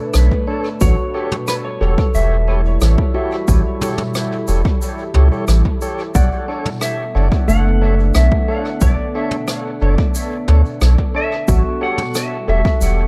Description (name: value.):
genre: ambient dub.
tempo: 90 BPM.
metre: 4/4.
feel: straight.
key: B minor.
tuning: A4 = 439 Hz.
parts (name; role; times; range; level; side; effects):
clean lap steel guitar; melody; 0.0-13.1 s; A4 to F#5; -28 LUFS; equal; dub echo.
deep dark ambient pad; sustained chords; 0.0-13.1 s; G3 to B4; -28 LUFS; equal; chorus, built-in reverb.
handpan; arpeggios; 0.0-13.1 s; A3 to F#5; -29 LUFS; equal; dub echo.
soft dub sub bass; bass; 0.1-13.1 s; E1 to D2; -15 LUFS; equal; none.
jazz brush drum kit; drums; 0.1-12.9 s; rim click, shaker, toms; -29 LUFS; equal; dub echo.
electronic kick drum; drums; 0.3-12.8 s; none; -20 LUFS; equal; overdrive.
tonewheel organ; stabs; 0.5-12.6 s; D4 to C#5; -29 LUFS; equal; overdrive, stopped rotary speaker, dub echo.
room: light reverb, small room ambience.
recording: none.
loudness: -17 LUFS.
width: mono.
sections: 0.0-13.1 A section.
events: none.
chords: 0.0 Bm9; 0.8 A7; 6.2 Bm9; 11.5 A7.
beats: 0.15 | 0.82 1.48 2.15 2.82 | 3.48 4.15 4.82 5.48 | 6.15 6.82 7.48 8.15 | 8.82 9.48 10.15 10.82 | 11.48 12.15 12.82.